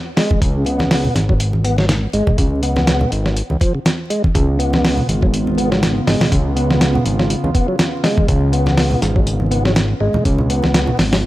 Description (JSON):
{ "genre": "breakbeat, breaks", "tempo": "122 BPM", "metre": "4/4", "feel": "swing 56% on 16ths", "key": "unclear", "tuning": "A4 = 440 Hz", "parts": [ { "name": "tonewheel organ", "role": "riff", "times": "0.2-11.2 s", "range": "C#3 to B3", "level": "-21 LUFS", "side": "equal", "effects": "overdrive, fast rotary speaker, tube saturation, dub echo" }, { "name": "dusty soul sampler-style drum kit", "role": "drums", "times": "0.2-11.2 s", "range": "hi-hat, kick drum, snare drum", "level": "-17 LUFS", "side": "equal", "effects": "none" }, { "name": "congas", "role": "percussion", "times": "0.3-11.1 s", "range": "none", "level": "-24 LUFS", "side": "right 1 dB", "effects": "none" }, { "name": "fat analog bass", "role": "bass", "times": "0.4-11.2 s", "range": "G#1 to C#2", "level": "-18 LUFS", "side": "equal", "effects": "none" }, { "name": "warbly tape-like pad", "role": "sustained chords", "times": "4.3-11.2 s", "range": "C#3 to E#4", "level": "-23 LUFS", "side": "equal", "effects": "chorus, built-in reverb, vintage 12-bit sampler grit, sidechain pumping" }, { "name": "reverse cymbal", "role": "sound effects", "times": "11.2-11.3 s", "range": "none", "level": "barely audible", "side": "none", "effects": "none" } ], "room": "little or no reverb", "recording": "vinyl crackle", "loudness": "-14 LUFS", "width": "side -16 dB against mid", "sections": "0.0-11.3 A section", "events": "none", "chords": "0.0 C#7", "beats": "| 0.41 0.91 1.40 1.89 | 2.38 2.87 3.37 3.86 | 4.35 4.84 5.33 5.82 | 6.32 6.81 7.30 7.79 | 8.28 8.78 9.27 9.76 | 10.25 10.74 11.23" }